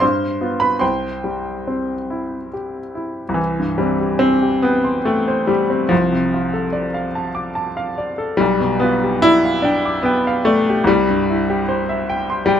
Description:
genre	classical, romantic character piece for solo piano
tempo	72 BPM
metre	3/4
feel	rubato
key	C major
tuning	A4 = 440 Hz
part	bright upright piano	solo	0.0-12.6 s	B1 to D6	-16 LUFS	left 1 dB	none
room	moderate large studio reverb, RT60 0.9 s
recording	dark, warm production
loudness	-16 LUFS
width	side -9 dB against mid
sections	0.0-3.4 A section; 3.4-12.6 B section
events	none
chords	0.0 G7; 0.8 C; 3.4 C5; 5.9 Dm7/C; 8.4 G7/B; 10.9 C

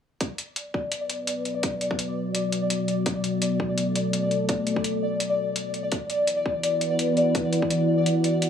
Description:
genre	half-time drum and bass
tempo	168 BPM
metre	4/4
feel	swing 53% on 16ths, half-time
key	B minor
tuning	A4 = 440 Hz
part	dark analog pad	sustained chords	1.1-8.5 s	B3 to F#5	-26 LUFS	equal	chorus, sidechain pumping
part	electronic hi-hat	drums	0.2-8.5 s	none	-30 LUFS	left 1 dB	none
part	electronic kick drum	drums	0.2-7.7 s	none	-28 LUFS	equal	high-pass filter on kick, high-pass filter on room
part	pulsing gated texture	texture	0.8-8.5 s	D5	-27 LUFS	left 1 dB	chorus, built-in reverb
room	moderate lush hall reverb, RT60 1.8 s, digital ambience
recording	small room ambience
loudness	-23 LUFS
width	side -8 dB against mid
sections	0.2-8.5 A section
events	filter sweep on analog synth pad 0.2-8.5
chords	0.2 Bm; 5.9 E5

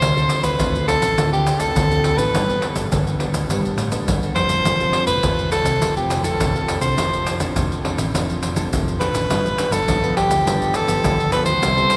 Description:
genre	samba and choro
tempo	103 BPM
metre	4/4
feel	straight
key	unclear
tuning	A4 = 440 Hz
part	clear soprano saxophone	melody	0.0-12.0 s	G4 to C5	-23 LUFS	equal	none
part	nylon-string guitar	accompaniment	0.0-12.0 s	G2 to A4	-28 LUFS	equal	none
part	hollow-body short-scale fingered electric bass	bass	0.0-11.9 s	F1 to A2	-27 LUFS	equal	none
part	maracas, surdo and pandeiro	percussion	0.0-12.0 s	none	-25 LUFS	equal	none
room	wet cathedral reverb, RT60 6.6 s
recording	recorded in a church or concert hall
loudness	-19 LUFS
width	mono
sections	0.0-12.0 A section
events	none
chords	0.0 Dm7; 2.3 Gadd9; 4.7 Dm7/F; 9.3 G7

